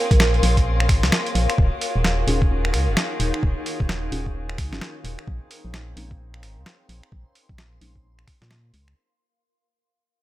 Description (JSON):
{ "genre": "UK garage, two-step garage", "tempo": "130 BPM", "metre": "4/4", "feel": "swing 62% on 16ths", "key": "unclear", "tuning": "A4 = 441 Hz", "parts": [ { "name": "rich chamber violin section", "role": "sustained chords", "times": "0.0-8.9 s", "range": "C4 to Ab4", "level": "-33 LUFS", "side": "equal", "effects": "sidechain pumping, low-pass filter" }, { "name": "granular cloud pad", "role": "texture", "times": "0.0-9.0 s", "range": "Eb4 to C6", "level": "-29 LUFS", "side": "left 2 dB", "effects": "built-in reverb, sidechain pumping" }, { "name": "organ-like FM bass", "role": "bass", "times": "0.1-8.9 s", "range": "Eb1 to Bb2", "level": "-23 LUFS", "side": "equal", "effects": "tube saturation" }, { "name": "boom bap sampler-style drum kit", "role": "drums", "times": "0.1-8.9 s", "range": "finger snaps, hi-hat, snare drum", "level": "-24 LUFS", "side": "equal", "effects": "none" }, { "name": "electronic kick drum", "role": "drums", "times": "0.1-8.4 s", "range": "none", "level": "-20 LUFS", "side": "equal", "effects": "none" }, { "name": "deep mellow chord stab", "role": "stabs", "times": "2.3-7.9 s", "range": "Ab3 to Ab4", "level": "-31 LUFS", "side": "equal", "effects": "chorus, tape echo" } ], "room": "digital ambience", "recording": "none", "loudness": "-19 LUFS", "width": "side -15 dB against mid", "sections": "0.0-9.0 A section", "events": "fade-out 0.0-9.0; filter sweep on violin section 0.0-9.0", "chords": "0.0 Bbm9; 1.6 Ebm11; 5.3 Bbm11", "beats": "0.20 0.66 1.12 | 1.58 2.04 2.51 2.97 | 3.43 3.89 4.35 4.81 | 5.28 5.74 6.20 6.66 | 7.12 7.58 8.04 8.51" }